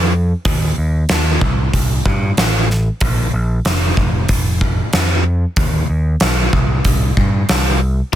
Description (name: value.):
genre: hard rock.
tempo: 94 BPM.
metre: 4/4.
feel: straight.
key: unclear.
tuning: A4 = 440 Hz.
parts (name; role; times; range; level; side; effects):
overdriven picked electric bass; bass; 0.0-8.2 s; F1 to G2; -16 LUFS; equal; none.
gated 80s drum kit; drums; 0.5-8.2 s; hi-hat, kick drum, snare drum; -16 LUFS; equal; none.
room: little or no reverb.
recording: dense, heavily limited modern master.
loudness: -13 LUFS.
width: side -12 dB against mid.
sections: 0.0-8.2 A section.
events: none.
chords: none.